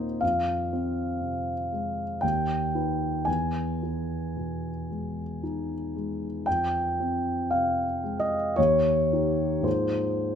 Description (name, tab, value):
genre	classical, impressionist solo piano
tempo	57 BPM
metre	3/4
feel	uneven beats, rubato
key	unclear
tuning	A4 = 439 Hz
part	warm concert grand piano	solo	0.0-10.4 s	Eb2 to G#5	-25 LUFS	equal	none
room	light reverb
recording	none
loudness	-25 LUFS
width	side -8 dB against mid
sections	0.0-10.4 A section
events	none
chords	0.2 Fm; 2.2 Ebaug; 3.3 Emaj7; 6.5 Fmadd9; 8.6 Eb7; 9.7 Ab69